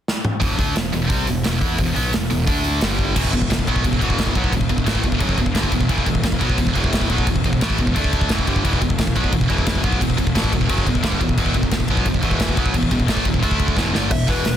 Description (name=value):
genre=heavy metal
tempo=175 BPM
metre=4/4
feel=straight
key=E minor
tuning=A4 = 435 Hz
part: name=big rock drum kit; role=drums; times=0.1-14.5 s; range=crash cymbal, hi-hat, kick drum, snare drum, toms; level=-20 LUFS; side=equal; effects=none
part: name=heavy high-gain guitar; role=riff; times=0.4-14.6 s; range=E2 to E4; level=-20 LUFS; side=equal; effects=distortion
part: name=fuzz picked electric bass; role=bass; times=0.4-14.6 s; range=E1 to E2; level=-24 LUFS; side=equal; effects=overdrive
part: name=high-gain lead guitar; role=melody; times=14.1-14.6 s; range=B4 to E5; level=-24 LUFS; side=left 4 dB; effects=distortion
room=little or no reverb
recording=dense, heavily limited modern master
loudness=-17 LUFS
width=side -10 dB against mid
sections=0.4-3.2 A section; 3.2-14.1 B section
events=drum fill 0.1-0.4, 3.0, 13.8-14.1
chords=0.4 E5; 2.5 D5; 2.8 G5; 3.2 E5; 8.0 D5; 8.3 Em; 13.4 D5; 13.8 Em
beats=0.07 | 0.42 0.76 1.10 1.45 | 1.79 2.13 2.47 2.82 | 3.16 3.50 3.84 4.19 | 4.53 4.87 5.21 5.55 | 5.90 6.24 6.58 6.92 | 7.27 7.61 7.95 8.29 | 8.64 8.98 9.32 9.66 | 10.01 10.35 10.69 11.03 | 11.38 11.72 12.06 12.40 | 12.74 13.09 13.43 13.77 | 14.11 14.45